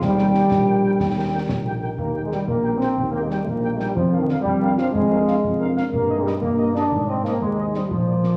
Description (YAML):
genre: military-style march for wind band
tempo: 122 BPM (dotted quarters)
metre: 6/8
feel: straight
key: Eb major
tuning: A4 = 440 Hz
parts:
  - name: clear euphonium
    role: second line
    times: 0.0-1.7 s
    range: G4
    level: -30 LUFS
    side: equal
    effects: none
  - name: hollow flute section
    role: second line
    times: 0.0-1.8 s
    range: G5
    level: -31 LUFS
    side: equal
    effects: none
  - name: dark trombone section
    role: sustained chords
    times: 0.0-8.4 s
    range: D3 to D4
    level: -23 LUFS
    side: equal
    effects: none
  - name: mellow tuba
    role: bass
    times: 0.0-8.3 s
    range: Bb1 to Bb2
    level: -28 LUFS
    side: equal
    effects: none
  - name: concert snare drum and concert bass drum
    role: drums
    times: 0.0-8.4 s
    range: none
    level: -33 LUFS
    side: equal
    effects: none
  - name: warm trumpet section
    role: melody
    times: 0.2-8.3 s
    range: D5 to G5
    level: -37 LUFS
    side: equal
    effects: none
  - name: warm French horn section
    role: accompaniment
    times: 0.2-8.3 s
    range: C4 to C5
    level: -36 LUFS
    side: equal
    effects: none
room: wet recital hall reverb, RT60 1.4 s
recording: vinyl crackle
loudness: -21 LUFS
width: mono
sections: 0.0-2.0 A section; 2.0-8.4 B section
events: none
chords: 0.0 Eb; 4.0 Bb7/F; 5.9 Eb/G; 6.9 Ab